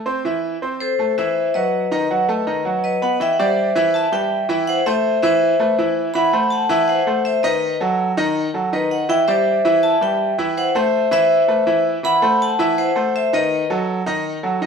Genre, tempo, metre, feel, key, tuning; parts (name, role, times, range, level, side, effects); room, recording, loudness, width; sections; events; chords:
latin; 163 BPM; 4/4; straight; E minor; A4 = 440 Hz
bright concert grand piano; accompaniment; 0.1-14.7 s; D#3 to C6; -20 LUFS; right 2 dB
vibraphone with hard mallets; melody; 0.8-13.7 s; A4 to B5; -18 LUFS; left 2 dB
wet stone room reverb, RT60 0.9 s; band playing live in one room; -16 LUFS; side -6 dB against mid
0.0-3.2 A section; 3.2-14.7 B section
0.3 F#m7b5; 1.7 B7; 3.2 Em7; 4.7 Am; 6.1 F#m7b5; 7.6 B7 (rootless); 9.1 Em7; 10.6 Am; 12.0 F#m7b5; 13.5 B7 (rootless)